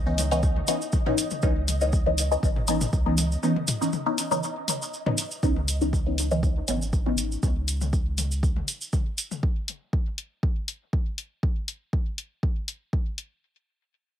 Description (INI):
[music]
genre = dub techno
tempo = 120 BPM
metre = 4/4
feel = swing 53% on 16ths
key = C# minor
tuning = A4 = 440 Hz
[part]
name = soft dub sub bass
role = bass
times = 0.0-8.6 s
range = G#1 to C#2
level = -28 LUFS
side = equal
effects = sidechain pumping
[part]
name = flickering grainy texture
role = texture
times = 0.0-5.4 s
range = D#5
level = -40 LUFS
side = right 2 dB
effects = built-in reverb, sidechain pumping
[part]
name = filtered dub chord stab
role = stabs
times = 0.1-7.4 s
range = E3 to D#4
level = -27 LUFS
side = left 1 dB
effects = phaser, sidechain pumping, dub echo
[part]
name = electronic hi-hat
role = drums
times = 0.2-13.3 s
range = none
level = -30 LUFS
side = left 4 dB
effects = overdrive
[part]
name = cabasa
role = percussion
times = 0.2-9.4 s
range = none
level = -32 LUFS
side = right 3 dB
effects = none
[part]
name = electronic toms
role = percussion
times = 0.2-9.4 s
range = none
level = -33 LUFS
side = left 4 dB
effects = sidechain pumping on toms, dub echo
[part]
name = electronic kick drum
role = drums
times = 0.4-13.0 s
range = none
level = -25 LUFS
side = equal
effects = overdrive
[sound]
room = little or no reverb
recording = none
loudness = -24 LUFS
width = side -10 dB against mid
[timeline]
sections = 0.0-5.4 A section; 5.4-13.4 B section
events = break 3.4-5.4; filter sweep on synth stab 5.4-7.4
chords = 0.0 C#m9; 5.4 N.C.